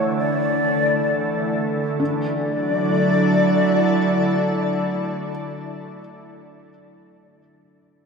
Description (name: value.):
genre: ambient.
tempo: free time.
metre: none.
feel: none.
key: D major.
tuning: A4 = 438 Hz.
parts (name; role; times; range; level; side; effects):
wooden-headed alto flute; melody; 0.0-5.3 s; C#5 to D5; -23 LUFS; left 3 dB; ping-pong delay.
soft additive organ-like pad; sustained chords; 0.0-5.8 s; D3 to D5; -21 LUFS; right 1 dB; ensemble chorus, built-in reverb.
felt-muted upright piano; arpeggios; 0.0-8.1 s; D4 to A4; -31 LUFS; left 2 dB; none.
overtone-sweeping drone; drone; 0.0-5.3 s; D3 to A3; -28 LUFS; equal; chorus, built-in reverb.
room: wet lush hall reverb, RT60 3.3 s.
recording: dark, warm production.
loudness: -18 LUFS.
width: side -5 dB against mid.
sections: 0.0-2.0 A section; 2.0-5.7 B section.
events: none.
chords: 0.0 Dadd9.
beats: free time.